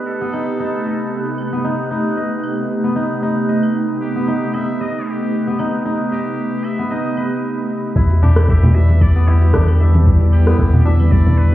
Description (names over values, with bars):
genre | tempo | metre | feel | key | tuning
organic downtempo | 114 BPM | 4/4 | swing 54% on 16ths | E minor | A4 = 442 Hz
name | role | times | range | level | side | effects
ethereal airy pad | sustained chords | 0.0-11.5 s | C3 to B4 | -21 LUFS | right 1 dB | ensemble chorus, built-in reverb, sidechain pumping
steel-string zither | arpeggios | 0.0-11.5 s | B3 to E5 | -22 LUFS | left 1 dB | digital delay
drifting glass-harmonics texture | texture | 0.0-11.5 s | G3 to B4 | -33 LUFS | right 2 dB | chorus, built-in reverb
trumpet with straight mute | melody | 0.1-11.5 s | G4 to E5 | -33 LUFS | equal | digital delay
deep house drum kit | drums | 0.3-11.5 s | claves, hi-hat, rim click, shaker | -23 LUFS | equal | overdrive
warm sub bass | bass | 8.0-11.5 s | E2 | -12 LUFS | equal | none
electronic kick drum | drums | 8.0-11.2 s | none | -16 LUFS | equal | overdrive
bongos and congas | percussion | 8.1-11.5 s | none | -20 LUFS | right 1 dB | none
room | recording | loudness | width
light reverb | heard muffled through a wall, club reverb, EQ | -14 LUFS | side -14 dB against mid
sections
0.0-8.0 A section; 8.0-11.5 B section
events
none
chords
0.0 B7b9b13; 8.0 Em7